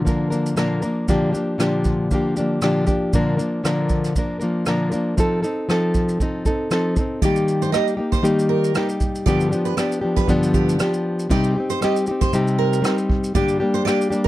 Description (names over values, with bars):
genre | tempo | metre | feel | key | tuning
acoustic pop | 118 BPM | 4/4 | swing 55% on 16ths | Bb major | A4 = 440 Hz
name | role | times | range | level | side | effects
nylon-string guitar | accompaniment | 0.0-14.3 s | G2 to Bb4 | -19 LUFS | left 1 dB | none
vintage brush drum kit | drums | 0.1-14.3 s | kick drum, rim click, shaker | -24 LUFS | right 1 dB | none
picked steel-string acoustic guitar | arpeggios | 7.2-14.3 s | G4 to Eb5 | -26 LUFS | right 9 dB | slapback echo
room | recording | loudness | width
light reverb | dark, warm production | -18 LUFS | side -15 dB against mid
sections
0.0-7.2 A section; 7.2-14.3 B section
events
none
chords
0.0 Bb; 1.1 Gm7/Bb; 3.1 Bb; 5.2 F7; 7.2 Eb; 9.3 G7; 11.3 Cm; 13.3 Gm